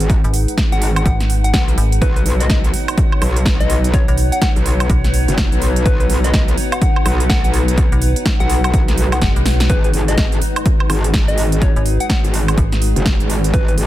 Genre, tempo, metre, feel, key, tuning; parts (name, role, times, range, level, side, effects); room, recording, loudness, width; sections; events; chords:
bass house; 125 BPM; 4/4; swing 61% on 16ths; A4 = 444 Hz
dark analog pad; sustained chords; 0.0-13.9 s; G#3 to C#5; -28 LUFS; left 2 dB; lush chorus, sidechain pumping
metallic wobble bass; bass; 0.0-13.9 s; F#1 to B1; -17 LUFS; equal; distortion, chorus, overdrive, sidechain pumping
big-room dance drum kit; drums; 0.0-13.9 s; hi-hat, snare drum, woodblock; -22 LUFS; right 2 dB; overdrive
warbly tape-like pad; texture; 0.0-13.9 s; D#4 to F#5; -26 LUFS; equal; chorus, built-in reverb, phaser, sidechain pumping
electronic kick drum; drums; 0.1-13.7 s; -16 LUFS; equal; overdrive
metallic FM bass; bass; 0.2-12.9 s; F#1 to B1; -16 LUFS; equal; overdrive, sidechain pumping
soft struck synth lead; melody; 0.7-13.7 s; B4 to F#5; -25 LUFS; left 2 dB; chorus, digital delay
swell; sound effects; 9.0-9.7 s; -30 LUFS; right 1 dB
little or no reverb; dense, heavily limited modern master; -13 LUFS; side -14 dB against mid
0.0-13.9 A section
swell 9.0-9.7; drum fill 9.5
0.0 G#m7; 2.0 Badd9; 9.7 G#m7